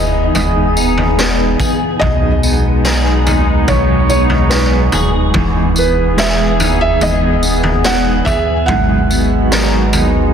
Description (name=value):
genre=dream pop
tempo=72 BPM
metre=4/4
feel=straight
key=unclear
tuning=A4 = 441 Hz
part: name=felt-muted upright piano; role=melody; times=0.0-10.3 s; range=B4 to F#5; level=-19 LUFS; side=right 2 dB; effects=digital delay, shimmer reverb
part: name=mellow electric guitar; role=accompaniment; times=0.0-10.3 s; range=G#2 to G#4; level=-20 LUFS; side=right 3 dB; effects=tremolo, wide subtle chorus, shimmer reverb
part: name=warbly tape-like pad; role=sustained chords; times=0.0-10.3 s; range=E3 to G#4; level=-18 LUFS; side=equal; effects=chorus, built-in reverb, shimmer reverb
part: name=clean electric guitar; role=arpeggios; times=0.0-10.3 s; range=G#2 to A#4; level=-19 LUFS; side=left 4 dB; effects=ensemble chorus, digital delay, shimmer reverb
part: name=warm sub bass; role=bass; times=0.0-10.3 s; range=D#1 to B1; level=-17 LUFS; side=equal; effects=none
part: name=vibraphone with hard mallets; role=texture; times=0.0-5.7 s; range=B5 to D#6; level=-26 LUFS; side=right 6 dB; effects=stereo widening, digital delay, shimmer reverb
part: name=raw garage drum kit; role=drums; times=0.3-10.1 s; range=kick drum, snare drum, tambourine, toms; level=-17 LUFS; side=equal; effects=none
room=moderate concert hall reverb, RT60 2.1 s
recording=dense, heavily limited modern master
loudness=-11 LUFS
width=side -8 dB against mid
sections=0.0-10.3 A section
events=none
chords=0.0 Emaj7; 2.0 B6; 5.4 Emaj7; 8.7 G#m11